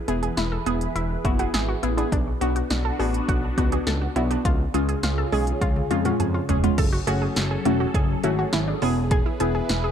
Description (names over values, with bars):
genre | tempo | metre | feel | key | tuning
synth-pop | 103 BPM | 4/4 | straight | F# minor | A4 = 441 Hz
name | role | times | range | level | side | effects
phased analog pad | sustained chords | 0.0-9.9 s | C#3 to B4 | -30 LUFS | equal | phaser, chorus
warbly dusty pluck | accompaniment | 0.1-9.7 s | G#3 to G#4 | -26 LUFS | left 1 dB | chorus, phaser
analog pluck | arpeggios | 0.1-9.9 s | B3 to A4 | -30 LUFS | right 1 dB | chorus, tape echo
smooth gliding synth bass | bass | 0.1-9.9 s | E1 to E#2 | -26 LUFS | equal | none
deep house drum kit | drums | 0.1-9.8 s | crash cymbal, hi-hat, kick drum, snare drum, toms | -26 LUFS | equal | none
room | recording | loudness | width
light reverb | dark, warm production | -21 LUFS | side -8 dB against mid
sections
0.0-6.8 A section; 6.8-9.9 B section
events
drum fill 5.6-6.8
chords
0.0 E; 2.1 Bm; 4.5 C#; 6.8 F#madd9; 8.8 E